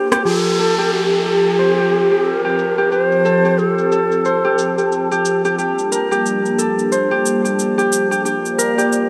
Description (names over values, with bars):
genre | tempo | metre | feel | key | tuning
organic downtempo | 90 BPM | 4/4 | swing 59% on 16ths | unclear | A4 = 444 Hz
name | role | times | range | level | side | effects
airy breathy pad | sustained chords | 0.0-9.1 s | F3 to A5 | -25 LUFS | equal | chorus, phaser
Celtic harp | arpeggios | 0.0-9.1 s | G4 to C5 | -20 LUFS | equal | low-pass filter, tape echo
organic electronic drum kit | drums | 0.1-9.1 s | hi-hat, rim click, shaker | -27 LUFS | equal | overdrive, low-pass filter on hats, low-pass filter on perc, low-pass filter on snare, low-pass filter on room
low Native American-style wooden flute | melody | 0.3-5.3 s | G4 to C5 | -20 LUFS | equal | tape echo
downlifter | sound effects | 0.3-5.6 s | none | -30 LUFS | equal | none
bronze singing bowl | texture | 0.3-9.1 s | F3 to F4 | -28 LUFS | equal | none
room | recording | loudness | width
moderate huge ambient reverb, RT60 3.8 s | none | -16 LUFS | mono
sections
0.3-9.1 A section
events
drum fill 0.0; band accent 0.1-0.4; filter sweep on drum 0.3-9.1; filter sweep on analog synth pad 0.3-9.1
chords
0.3 Fadd9; 5.6 Gm9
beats
| 0.25 0.92 1.59 2.25 | 2.92 3.59 4.25 4.92 | 5.59 6.25 6.92 7.59 | 8.25 8.92